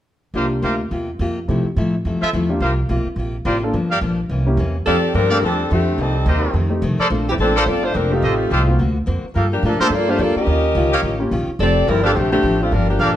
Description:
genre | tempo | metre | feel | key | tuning
jazz, big band swing | 214 BPM | 4/4 | swing 59% on 8ths | F major | A4 = 436 Hz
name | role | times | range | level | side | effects
picked steel-string acoustic guitar | accompaniment | 0.3-13.2 s | F2 to C5 | -24 LUFS | left 2 dB | none
warm concert grand piano | accompaniment | 0.3-12.4 s | A3 to A4 | -24 LUFS | left 1 dB | none
warm trumpet section | stabs | 0.3-13.1 s | F4 to F5 | -22 LUFS | right 1 dB | none
upright bass | bass | 0.3-13.2 s | F1 to C3 | -20 LUFS | equal | none
dark saxophone section | melody | 4.9-13.2 s | D3 to Eb5 | -18 LUFS | left 1 dB | none
room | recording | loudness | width
moderate large studio reverb, RT60 1.3 s | close, detailed microphones | -16 LUFS | side -12 dB against mid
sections
0.3-4.9 A section; 4.9-13.2 B section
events
none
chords
0.3 C7sus4; 1.5 Fmaj7; 2.6 C7sus4; 3.7 Gm7; 4.3 C7b9; 4.9 F69; 6.0 Cm7; 6.5 F7; 7.1 Bbmaj9; 8.2 Am7b5; 8.8 D7alt; 9.3 Gm9; 10.5 Eb9; 11.6 F69

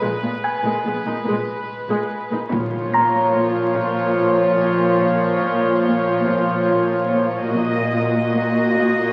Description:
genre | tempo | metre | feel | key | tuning
cinematic, suspense film score | 72 BPM | 3/4 | straight | Bb phrygian | A4 = 439 Hz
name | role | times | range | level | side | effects
warm symphonic violin section | melody | 0.0-9.1 s | Cb5 to Eb5 | -25 LUFS | equal | none
rich studio viola section | accompaniment | 0.0-9.1 s | F3 to Gb4 | -24 LUFS | equal | none
dark chamber cello section | bass | 0.0-9.1 s | Bb2 | -26 LUFS | equal | none
rich studio double bass section | bass | 0.0-3.3, 7.5-8.3 s | Bb1 | -37 LUFS | equal | none
music box | texture | 0.0-5.4 s | Ab5 to Bb6 | -25 LUFS | equal | none
warm symphonic cello section | riff | 2.5-9.0 s | Bb2 to Bb3 | -29 LUFS | equal | none
impact | sound effects | 2.5-5.0 s | none | -34 LUFS | equal | none
room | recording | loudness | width
wet scoring stage reverb, RT60 2.0 s | very old 78 rpm record, vinyl crackle | -19 LUFS | mono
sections
0.0-2.5 A section; 2.5-9.1 B section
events
impact 2.5-5.0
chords
0.0 Abm/Bb; 2.5 Bbm; 7.5 Ebm/Bb

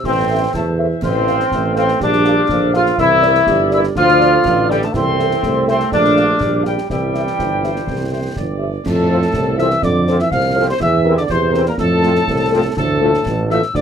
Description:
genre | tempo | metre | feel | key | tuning
military-style march for wind band | 123 BPM | 2/4 | straight | F major | A4 = 443 Hz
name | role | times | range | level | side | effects
dark cornet | melody | 0.0-13.8 s | G4 to F5 | -23 LUFS | equal | none
hollow piccolo | second line | 0.0-13.8 s | G5 to F6 | -24 LUFS | left 3 dB | none
mellow euphonium | second line | 0.0-13.8 s | A2 to A3 | -23 LUFS | right 3 dB | none
warm woodwind section | second line | 0.0-13.8 s | G4 to F5 | -26 LUFS | left 3 dB | none
concert snare drum, concert bass drum and clash cymbals | drums | 0.0-13.8 s | none | -27 LUFS | equal | none
warm trombone section | sustained chords | 0.1-13.6 s | E3 to F4 | -16 LUFS | left 1 dB | none
warm tuba | bass | 0.1-13.8 s | G1 to F2 | -19 LUFS | right 2 dB | none
mellow French horn section | accompaniment | 0.3-13.6 s | A3 to F5 | -20 LUFS | left 2 dB | none
room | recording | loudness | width
light reverb | none | -13 LUFS | side -7 dB against mid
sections
0.0-8.9 A section; 8.9-13.8 B section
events
none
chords
0.0 Am; 1.0 F/A; 2.0 Gm7/Bb; 3.0 C9; 4.0 Dm; 4.9 Am/C; 5.9 Gm7/Bb; 6.9 C; 8.9 F; 10.8 C7/E; 11.8 F; 12.8 Dm

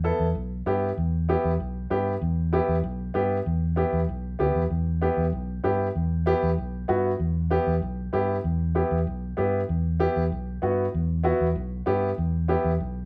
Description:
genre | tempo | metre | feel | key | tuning
latin, cumbia | 193 BPM | 4/4 | straight | E minor | A4 = 440 Hz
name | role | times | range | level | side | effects
warm upright piano | accompaniment | 0.0-12.7 s | B3 to A4 | -28 LUFS | equal | none
fingered electric bass | bass | 0.0-13.0 s | B1 to G2 | -28 LUFS | equal | none
room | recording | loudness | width
wet studio reverb, RT60 0.8 s | band playing live in one room | -26 LUFS | mono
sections
0.0-4.7 A section; 4.7-13.1 A section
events
none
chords
0.0 Em

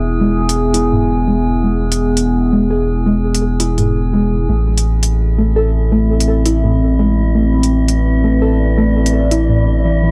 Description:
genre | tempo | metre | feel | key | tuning
half-time drum and bass | 168 BPM | 4/4 | swing 59% on 16ths, half-time | A harmonic minor | A4 = 440 Hz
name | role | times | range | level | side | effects
dark analog pad | sustained chords | 0.0-10.1 s | B3 to E5 | -21 LUFS | equal | chorus, phaser, vintage 12-bit sampler grit
warbly dusty pluck | arpeggios | 0.0-10.1 s | G#2 to A4 | -21 LUFS | equal | lush chorus, tape echo
saturated sub bass | bass | 0.0-10.1 s | E1 to A1 | -18 LUFS | equal | none
metallic inharmonic drone | texture | 0.0-10.1 s | E4 to G#4 | -27 LUFS | equal | chorus, built-in reverb, phaser
electronic hi-hat | drums | 0.5-9.4 s | none | -23 LUFS | equal | none
room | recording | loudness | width
light reverb | dry, gritty hardware recording | -14 LUFS | mono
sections
0.0-10.1 A section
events
filter sweep on synth pluck 0.0-10.1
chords
0.0 E; 4.5 Am

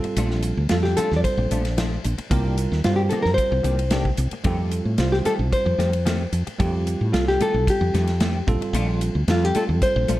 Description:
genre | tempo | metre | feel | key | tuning
electric jazz fusion | 112 BPM | 4/4 | straight | F mixolydian | A4 = 439 Hz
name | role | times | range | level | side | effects
bell-like tine electric piano | accompaniment | 0.0-10.2 s | G3 to C5 | -28 LUFS | right 3 dB | none
clean electric guitar | stabs | 0.0-10.2 s | Eb3 to G4 | -30 LUFS | left 2 dB | ensemble chorus
woody fretless electric bass | bass | 0.0-10.2 s | Bb1 to A2 | -22 LUFS | equal | none
modern studio drum kit | drums | 0.0-10.2 s | hi-hat, kick drum, ride cymbal, snare drum | -27 LUFS | equal | none
nylon-string guitar | melody | 0.7-10.2 s | F4 to D5 | -24 LUFS | left 1 dB | none
room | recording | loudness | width
light reverb, small room reverb | dark, warm production | -19 LUFS | side -15 dB against mid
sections
0.0-10.2 A section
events
none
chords
0.0 Bbmaj7; 2.3 Cm9; 4.5 F9; 8.5 Bbmaj7

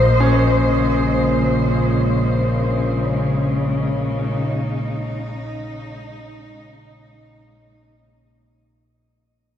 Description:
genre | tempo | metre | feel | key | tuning
dark ambient drone | free time | none | none | unclear | A4 = 440 Hz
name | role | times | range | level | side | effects
dark chamber cello section | sustained chords | 0.0-8.7 s | Bb2 to C5 | -20 LUFS | left 1 dB | shimmer reverb
clear baby grand piano | arpeggios | 0.0-8.7 s | Bb3 to Db4 | -25 LUFS | equal | tape echo, shimmer reverb
analog drone | drone | 0.0-8.7 s | Bb1 to Bb2 | -21 LUFS | equal | chorus
wind-like tuned noise texture | texture | 0.0-8.7 s | Eb5 | -31 LUFS | right 3 dB | built-in reverb, shimmer reverb
room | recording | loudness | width
wet cathedral reverb, RT60 5.2 s | in a vast, echoing space | -17 LUFS | side -10 dB against mid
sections
0.0-8.7 A section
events
fade-out 0.0-8.7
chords
0.0 Bbm; 0.7 Db5

